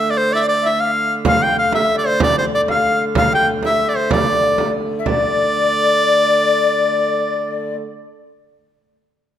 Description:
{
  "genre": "medieval dance",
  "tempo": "126 BPM (dotted quarters)",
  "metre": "6/8",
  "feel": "straight",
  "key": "D minor",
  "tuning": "A4 = 440 Hz",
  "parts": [
    { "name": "bright shawm", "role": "melody", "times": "0.0-7.7 s", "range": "C5 to G5", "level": "-17 LUFS", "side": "right 1 dB", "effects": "none" },
    { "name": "mellow tenor recorder", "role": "second line", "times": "0.0-7.8 s", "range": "C5 to G5", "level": "-20 LUFS", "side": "left 6 dB", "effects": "none" },
    { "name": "warm hurdy-gurdy", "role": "drone", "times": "0.0-7.7 s", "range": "D3 to A3", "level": "-24 LUFS", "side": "equal", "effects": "none" },
    { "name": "frame drum", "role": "percussion", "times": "1.2-5.2 s", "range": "none", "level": "-21 LUFS", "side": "right 4 dB", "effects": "none" }
  ],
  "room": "moderate scoring stage reverb, RT60 1.7 s",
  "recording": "close, detailed microphones",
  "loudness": "-14 LUFS",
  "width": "side -10 dB against mid",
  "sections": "0.0-5.1 A section; 5.1-7.0 B section",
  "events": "none",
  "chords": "none"
}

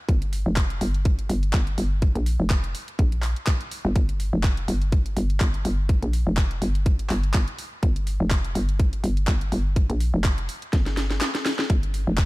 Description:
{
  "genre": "bass house",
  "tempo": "124 BPM",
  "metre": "4/4",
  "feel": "swing 55% on 16ths",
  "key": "G minor",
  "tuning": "A4 = 440 Hz",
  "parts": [
    { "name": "hollow knocking FM bass", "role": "bass", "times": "0.1-12.3 s", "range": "F1 to Bb1", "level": "-24 LUFS", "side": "equal", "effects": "sidechain pumping" },
    { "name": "electronic kick drum", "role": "drums", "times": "0.1-12.3 s", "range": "none", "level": "-20 LUFS", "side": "equal", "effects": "overdrive, studio reverb" },
    { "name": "garage drum kit", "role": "drums", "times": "0.1-12.3 s", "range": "handclaps, hi-hat, snare drum", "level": "-30 LUFS", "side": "equal", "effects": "overdrive, studio reverb" }
  ],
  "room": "little or no reverb",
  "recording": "dark, warm production",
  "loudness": "-21 LUFS",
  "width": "side -20 dB against mid",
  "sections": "0.0-12.3 A section",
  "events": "drum fill 10.7-11.7",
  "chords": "none"
}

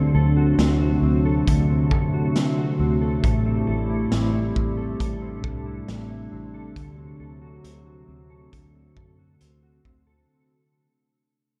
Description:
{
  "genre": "dream pop",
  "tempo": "68 BPM",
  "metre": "4/4",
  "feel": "straight",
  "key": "unclear",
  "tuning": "A4 = 439 Hz",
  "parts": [
    { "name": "warbly tape-like pad", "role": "sustained chords", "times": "0.0-10.3 s", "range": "C3 to G4", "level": "-28 LUFS", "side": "equal", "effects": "chorus, built-in reverb, tremolo" },
    { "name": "mellow electric guitar", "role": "arpeggios", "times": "0.0-10.9 s", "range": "A2 to A4", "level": "-27 LUFS", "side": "equal", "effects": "analog chorus, tape echo" },
    { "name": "vintage muted fingered electric bass", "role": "bass", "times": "0.0-10.2 s", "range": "A1 to F#2", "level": "-29 LUFS", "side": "equal", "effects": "none" },
    { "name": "raw garage drum kit", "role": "drums", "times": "0.6-10.1 s", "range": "hi-hat, kick drum, snare drum", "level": "-29 LUFS", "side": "equal", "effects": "none" }
  ],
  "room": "moderate lush hall reverb, RT60 3.0 s",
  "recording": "dark, warm production",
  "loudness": "-22 LUFS",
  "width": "mono",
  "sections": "0.0-10.3 A section",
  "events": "fade-out 0.0-10.3",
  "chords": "0.0 D7; 3.2 Am7; 6.8 D7"
}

